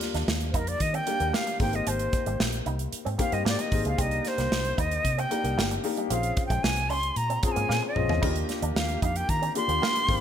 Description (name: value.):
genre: polished 1980s jazz-funk pop.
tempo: 113 BPM.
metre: 4/4.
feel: straight.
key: Eb major.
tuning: A4 = 440 Hz.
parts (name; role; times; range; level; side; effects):
warm grand piano; accompaniment; 0.0-10.2 s; G3 to Ab4; -32 LUFS; left 4 dB; wide subtle chorus.
electric guitar with an envelope filter; riff; 0.0-10.0 s; G3 to Eb4; -37 LUFS; right 5 dB; lush chorus.
modern studio drum kit; drums; 0.0-10.2 s; hi-hat, kick drum, snare drum, splash cymbal, toms; -29 LUFS; right 1 dB; gated reverb.
vintage muted fingered electric bass; bass; 0.1-10.2 s; G1 to Eb3; -30 LUFS; equal; none.
jazz flute; melody; 0.5-10.2 s; Bb4 to C6; -29 LUFS; equal; none.
mellow woodwind section; sustained chords; 8.2-10.2 s; Eb3 to G4; -42 LUFS; right 1 dB; none.
room: light reverb.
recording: bright 1980s-style digital production.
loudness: -24 LUFS.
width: side -9 dB against mid.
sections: 0.0-10.2 A section.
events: flute solo 0.0-10.2; drum fill 7.7-8.2.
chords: 0.0 Ebmaj9; 1.6 Abmaj7; 4.0 Cm7; 6.1 Bbm7; 8.2 Ebmaj9.